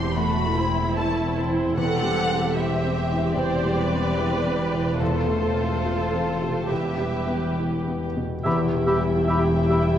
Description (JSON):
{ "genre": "cinematic, emotional film score for orchestra", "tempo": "67-76 BPM", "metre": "4/4", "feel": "rubato", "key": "E minor", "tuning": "A4 = 440 Hz", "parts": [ { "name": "muted studio violin section", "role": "melody", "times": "0.0-10.0 s", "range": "C5 to C6", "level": "-30 LUFS", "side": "left 2 dB", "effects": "none" }, { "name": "muted studio violin section", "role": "second line", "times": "0.0-10.0 s", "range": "A3 to E5", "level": "-31 LUFS", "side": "left 1 dB", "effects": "none" }, { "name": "felt-muted upright piano", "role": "accompaniment", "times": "0.0-10.0 s", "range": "E2 to F4", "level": "-28 LUFS", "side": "left 1 dB", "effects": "none" }, { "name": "muted studio viola section", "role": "accompaniment", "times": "0.0-10.0 s", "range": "E4 to C5", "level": "-30 LUFS", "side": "right 3 dB", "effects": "none" }, { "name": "concert harp", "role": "arpeggios", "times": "0.0-10.0 s", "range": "E2 to A4", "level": "-30 LUFS", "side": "left 5 dB", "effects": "none" }, { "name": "muted chamber double bass section", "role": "bass", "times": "0.0-10.0 s", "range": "E1", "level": "-30 LUFS", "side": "right 2 dB", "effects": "none" }, { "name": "muted symphonic cello section", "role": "bass", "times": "0.0-10.0 s", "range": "E2", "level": "-29 LUFS", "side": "right 2 dB", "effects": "none" }, { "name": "bright clarinet", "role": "second line", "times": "8.4-9.8 s", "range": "G4", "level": "-30 LUFS", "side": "right 1 dB", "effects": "none" }, { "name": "warm oboe", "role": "second line", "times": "8.4-9.9 s", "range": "E5", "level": "-30 LUFS", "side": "right 2 dB", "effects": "none" }, { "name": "mellow hollow silver concert flute", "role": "second line", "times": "8.5-9.8 s", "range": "B5", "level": "-32 LUFS", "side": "left 4 dB", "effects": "none" }, { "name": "mellow French horn section", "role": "sustained chords", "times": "8.5-10.0 s", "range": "E3 to G4", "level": "-26 LUFS", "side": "left 1 dB", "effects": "none" } ], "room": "moderate scoring stage reverb, RT60 1.6 s", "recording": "dark, warm production", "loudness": "-21 LUFS", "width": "side -10 dB against mid", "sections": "0.0-8.5 A section; 8.5-10.0 B section", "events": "none", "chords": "0.0 Am/E; 1.8 C/E; 5.0 F/E; 6.7 Em" }